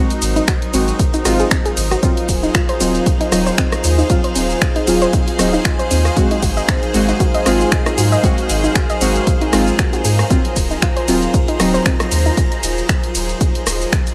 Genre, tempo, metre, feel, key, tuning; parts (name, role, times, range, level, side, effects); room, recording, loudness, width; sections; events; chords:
deep house; 116 BPM; 4/4; swing 56% on 16ths; Eb dorian; A4 = 440 Hz
airy breathy pad; sustained chords; 0.1-14.1 s; Gb3 to C5; -27 LUFS; equal; chorus, sidechain pumping
soft round pluck; arpeggios; 0.0-12.3 s; C4 to Eb5; -24 LUFS; equal; chorus, vintage 12-bit sampler grit, sidechain pumping, tape echo
deep mellow chord stab; stabs; 0.0-12.3 s; Gb3 to Gb4; -23 LUFS; equal; chorus, sidechain pumping, tape echo
clear symphonic string section; texture; 0.0-14.1 s; Eb4 to C5; -27 LUFS; equal; sidechain pumping
house drum kit; drums; 0.1-14.1 s; cabasa, finger snaps, hi-hat, ride cymbal, rim click; -24 LUFS; equal; studio reverb
sub bass with octave; bass; 0.2-13.8 s; Eb1 to Ab2; -22 LUFS; equal; tube saturation, sidechain pumping
electronic kick drum; drums; 0.5-14.0 s; -20 LUFS; equal; studio reverb
string machine, violins; texture; 2.0-14.1 s; F5 to Bb5; -32 LUFS; equal; ensemble chorus, sidechain pumping
light reverb, digital ambience; -16 LUFS; mono
0.0-14.1 A section
0.0 Ab7; 2.0 Ebm69; 6.2 Ab7; 10.3 Ebm69